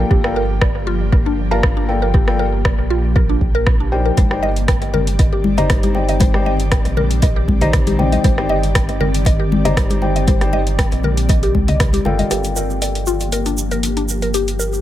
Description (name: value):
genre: afro house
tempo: 118 BPM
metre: 4/4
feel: swing 53% on 16ths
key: G minor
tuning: A4 = 440 Hz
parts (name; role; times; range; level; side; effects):
- ethereal airy pad; sustained chords; 0.0-14.8 s; Eb3 to D5; -24 LUFS; left 1 dB; ensemble chorus, built-in reverb, sidechain pumping
- mallet-like synth pluck; arpeggios; 0.0-14.7 s; D4 to G5; -23 LUFS; equal; chorus, phaser, sidechain pumping, dub echo
- felt-muted upright piano; stabs; 0.0-14.8 s; Eb4 to Bb5; -24 LUFS; left 3 dB; sidechain pumping, low-pass filter, analog delay
- warm sub bass; bass; 0.0-14.8 s; G1 to C2; -20 LUFS; equal; tube saturation, sidechain pumping
- electronic kick drum; drums; 0.1-11.9 s; none; -16 LUFS; equal; none
- afro-pop drum kit; drums; 0.2-14.6 s; hi-hat, rim click; -24 LUFS; equal; analog delay
- congas; percussion; 4.2-12.3 s; none; -22 LUFS; left 3 dB; analog delay
- egg shaker; percussion; 12.3-14.8 s; none; -28 LUFS; right 4 dB; none
room: studio reverb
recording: echo-heavy mix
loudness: -14 LUFS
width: side -13 dB against mid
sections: 0.0-12.3 A section; 12.3-14.8 B section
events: filter sweep on felt piano 12.3-14.8; filter sweep on ambient pad 12.3-14.8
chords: 0.0 Gm9